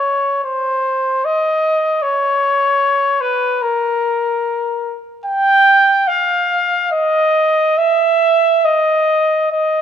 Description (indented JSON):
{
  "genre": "classical, free, expressive piece for unaccompanied trumpet",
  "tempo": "free time",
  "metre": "none",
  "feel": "none",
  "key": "unclear",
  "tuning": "A4 = 441 Hz",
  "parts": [
    { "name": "mellow trumpet", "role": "solo", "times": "0.0-9.8 s", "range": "A#4 to G5", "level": "-13 LUFS", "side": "equal", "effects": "none" }
  ],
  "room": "light reverb",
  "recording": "close, detailed microphones",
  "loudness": "-13 LUFS",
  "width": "side -8 dB against mid",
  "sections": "0.0-9.8 A section",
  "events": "none",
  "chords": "none"
}